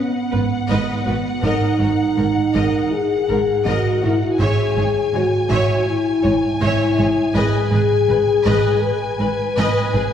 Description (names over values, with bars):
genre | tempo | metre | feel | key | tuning
cinematic | 81 BPM | 4/4 | straight | G# minor | A4 = 438 Hz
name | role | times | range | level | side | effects
warm symphonic violin section | melody | 0.0-10.1 s | F#5 to G#5 | -28 LUFS | left 3 dB | none
dark French horn section | sustained chords | 0.0-10.1 s | B3 to B4 | -19 LUFS | left 2 dB | none
warm symphonic violin section | second line | 0.3-10.0 s | F#4 to E5 | -30 LUFS | left 3 dB | none
warm symphonic viola section | accompaniment | 0.3-10.0 s | A#4 to C#5 | -27 LUFS | equal | none
rich symphonic cello section | bass | 0.3-10.0 s | G#2 | -24 LUFS | right 2 dB | none
warm symphonic double bass section | bass | 0.3-10.0 s | G#1 | -23 LUFS | right 3 dB | none
room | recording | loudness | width
wet concert hall reverb, RT60 1.7 s | heard from further back in the room | -16 LUFS | side -9 dB against mid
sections
0.0-10.1 A section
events
none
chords
0.0 B/G#; 1.4 D#m/G#; 4.4 C#m/G#; 7.4 G#m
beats
0.70 | 1.44 2.18 2.92 3.66 | 4.40 5.14 5.88 6.61 | 7.35 8.09 8.83 9.57